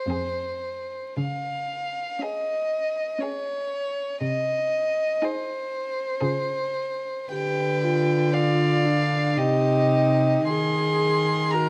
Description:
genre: classical, slow romantic movement for string quartet.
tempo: 58 BPM.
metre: 3/4.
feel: uneven beats, rubato.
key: unclear.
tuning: A4 = 443 Hz.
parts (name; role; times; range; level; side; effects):
rich violin; melody; 0.0-11.7 s; C5 to C6; -28 LUFS; equal; none.
warm violin; second line; 0.1-11.7 s; G4 to D5; -32 LUFS; equal; none.
warm viola; accompaniment; 0.1-11.7 s; C4 to Ab4; -30 LUFS; equal; none.
rich cello; bass; 0.1-11.7 s; F2 to Eb3; -28 LUFS; equal; none.
room: moderate recital hall reverb, RT60 1.3 s.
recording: close, detailed microphones, vinyl crackle.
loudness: -25 LUFS.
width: mono.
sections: 0.0-11.7 A section.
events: none.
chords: 0.1 Fm; 1.2 Db; 4.2 Ab/C; 6.2 Db; 7.3 G7/D; 9.4 Cm; 10.5 Ab7/Eb.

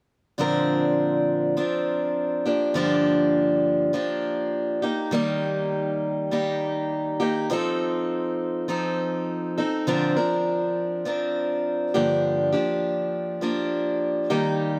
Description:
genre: pop.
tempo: 101 BPM.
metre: 4/4.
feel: straight.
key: Bb major.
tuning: A4 = 439 Hz.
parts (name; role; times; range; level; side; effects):
picked steel-string acoustic guitar; accompaniment; 0.4-14.8 s; G2 to Bb4; -24 LUFS; equal; none.
room: moderate plate reverb, RT60 2.7 s.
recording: none.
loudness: -24 LUFS.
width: mono.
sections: 0.4-9.9 A section; 9.9-14.8 B section.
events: none.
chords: 0.4 Bbadd9; 2.5 Gm7; 4.8 Eb; 7.5 F7; 9.9 Bbadd9; 11.9 Gm7.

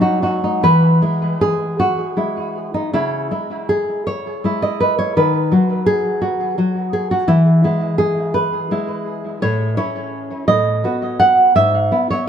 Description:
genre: romantic piece for solo classical guitar.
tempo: 45-58 BPM (dotted quarters).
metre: 6/8.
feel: rubato.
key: E major.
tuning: A4 = 440 Hz.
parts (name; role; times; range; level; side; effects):
nylon-string guitar; solo; 0.0-12.3 s; G#2 to F#5; -15 LUFS; equal; tape echo.
room: wet stone room reverb, RT60 1.1 s.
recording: band playing live in one room.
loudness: -15 LUFS.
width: side -8 dB against mid.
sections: 0.6-12.3 A section.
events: none.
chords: 0.0 B (rootless); 0.6 E; 2.9 C#m; 5.2 B/D#; 7.3 E; 9.4 A; 10.5 B7/A; 11.6 E/G#.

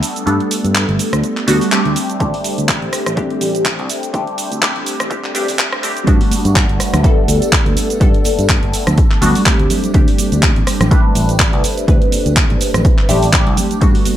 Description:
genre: filtered disco house.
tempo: 124 BPM.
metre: 4/4.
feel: swing 56% on 16ths.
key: G major.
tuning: A4 = 440 Hz.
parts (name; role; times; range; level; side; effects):
funky polysynth comp; accompaniment; 0.0-14.2 s; G3 to B4; -18 LUFS; equal; chorus, phaser, sidechain pumping, low-pass filter.
house drum kit; drums; 0.0-14.2 s; handclaps, hi-hat, rim click, shaker; -19 LUFS; right 1 dB; sidechain pumping on perc, high-pass filter on perc, high-pass filter on snare, sidechain pumping on hats, high-pass filter on hats, high-pass filter on room.
fingered electric bass; bass; 0.3-13.9 s; G1 to G2; -18 LUFS; equal; sidechain pumping, low-pass filter.
electronic kick drum; drums; 2.2-13.9 s; none; -14 LUFS; equal; none.
tambourine and congas; percussion; 6.1-14.2 s; none; -25 LUFS; right 3 dB; none.
room: light reverb, digital ambience.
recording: high-pass filter.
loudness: -12 LUFS.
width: side -12 dB against mid.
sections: 0.0-6.1 A section; 6.1-14.2 B section.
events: build-up 0.0-6.1; filter sweep 0.0-6.1; drop 6.1-14.2.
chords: 0.0 Gadd9; 2.0 D7sus4; 6.1 Gmaj9; 9.7 D7sus4.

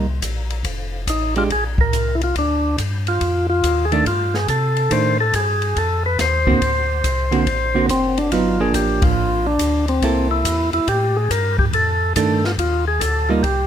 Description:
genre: soul jazz organ trio.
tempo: 141 BPM.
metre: 4/4.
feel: swing 66% on 8ths.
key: F mixolydian.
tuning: A4 = 442 Hz.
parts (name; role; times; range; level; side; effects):
hollow-body jazz guitar; accompaniment; 0.0-13.4 s; D3 to A4; -21 LUFS; right 4 dB; none.
tonewheel organ; bass; 0.0-13.7 s; F1 to C3; -22 LUFS; left 1 dB; chorus vibrato, slow rotary speaker.
open jazz drum kit; drums; 0.2-13.6 s; hi-hat, kick drum, ride cymbal, snare drum; -25 LUFS; equal; none.
percussive tonewheel organ; melody; 1.1-13.7 s; C4 to C5; -19 LUFS; left 1 dB; slow rotary speaker.
room: light reverb.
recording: none.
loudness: -16 LUFS.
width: side -9 dB against mid.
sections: 0.0-13.7 A section.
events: band accent 9.0.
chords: 0.0 C7(no3); 0.6 F69; 1.5 Bb69; 3.2 F13; 6.6 Daug7; 8.3 Gm7; 10.0 C6; 11.7 F13.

